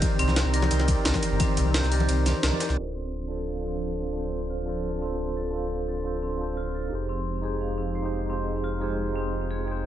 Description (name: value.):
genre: liquid drum and bass.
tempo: 174 BPM.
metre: 4/4.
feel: straight.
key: D phrygian.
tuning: A4 = 440 Hz.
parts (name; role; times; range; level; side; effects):
bright tine electric piano; accompaniment; 0.0-9.9 s; D4 to G5; -32 LUFS; right 1 dB; medium stereo tremolo, low-pass filter, tape echo.
lush unison pad; sustained chords; 0.0-9.9 s; Eb3 to C5; -34 LUFS; equal; chorus, phaser, sidechain pumping.
vibraphone with hard mallets; arpeggios; 0.0-9.9 s; C4 to G5; -34 LUFS; equal; low-pass filter, tape echo.
electronic kick drum; drums; 0.0-1.5 s; none; -27 LUFS; equal; none.
jungle sampler-style drum kit; drums; 0.0-2.7 s; hi-hat, ride cymbal, snare drum; -30 LUFS; equal; none.
jungle sampler-style drum kit; drums; 0.0-2.8 s; ride cymbal, snare drum; -35 LUFS; right 1 dB; high-pass filter on cymbals, high-pass filter on snare, high-pass filter on room.
congas; percussion; 0.0-2.6 s; none; -33 LUFS; left 4 dB; none.
sub bass with octave; bass; 0.2-9.9 s; D1 to C2; -28 LUFS; equal; none.
room: light reverb.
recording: low-pass filter, nothing above 10.3 kHz.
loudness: -25 LUFS.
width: side -11 dB against mid.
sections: 0.0-2.8 A section; 2.8-9.9 B section.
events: drop 0.0-2.8; kick drops out 2.1-2.8; band accent 2.4; filter sweep on tine electric piano 2.8-9.9; filter sweep on analog synth pad 2.8-9.9; filter sweep on vibraphone 2.8-9.9; filter sweep 2.8-9.9.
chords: 0.0 Cm7; 2.8 Dm7; 6.9 Fm7.